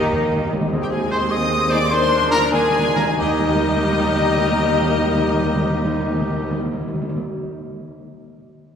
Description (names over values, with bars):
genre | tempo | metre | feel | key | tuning
quick classical-period movement for symphony orchestra | 88-103 BPM (dotted quarters) | 6/8 | rubato | Eb major | A4 = 440 Hz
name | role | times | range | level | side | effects
rich chamber violin section | melody | 0.0-6.5 s | Eb5 to Eb6 | -24 LUFS | left 5 dB | none
clear chamber violin section | second line | 0.0-6.6 s | Eb4 to Eb5 | -29 LUFS | left 5 dB | none
dark clarinet | second line | 0.0-6.6 s | G4 to Bb4 | -28 LUFS | left 2 dB | none
mellow hollow silver concert flute | second line | 0.0-6.6 s | Bb4 to Eb6 | -27 LUFS | equal | none
warm oboe | second line | 0.0-6.5 s | Eb4 to Eb5 | -28 LUFS | equal | none
clear bassoon | accompaniment | 0.0-6.5 s | Bb3 to Eb4 | -29 LUFS | equal | none
rich chamber viola section | accompaniment | 0.0-6.5 s | Eb3 to Eb4 | -29 LUFS | right 1 dB | none
mellow French horn section | sustained chords | 0.0-6.6 s | F3 to G4 | -30 LUFS | left 1 dB | none
clear trumpet | stabs | 0.0-6.5 s | Eb4 to C5 | -28 LUFS | right 1 dB | none
rich studio cello section | bass | 0.0-6.5 s | Eb2 to G4 | -29 LUFS | right 2 dB | none
timpani | percussion | 0.0-7.2 s | Eb3 | -24 LUFS | equal | none
clear chamber double bass section | bass | 0.1-6.5 s | Eb2 | -27 LUFS | right 1 dB | none
room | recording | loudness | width
wet church reverb, RT60 2.9 s | recorded in a church or concert hall | -17 LUFS | side -7 dB against mid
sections
0.7-3.2 A section; 3.2-5.8 B section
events
timpani fill 0.0-0.7, 1.9-3.2; slowing down 0.1-3.2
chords
0.0 Eb; 0.7 Ab/Eb; 1.9 Bb7/Eb; 3.2 Eb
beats
0.10 | 0.71 1.30 | 1.89 2.51 | 3.18 3.82 | 4.48 5.13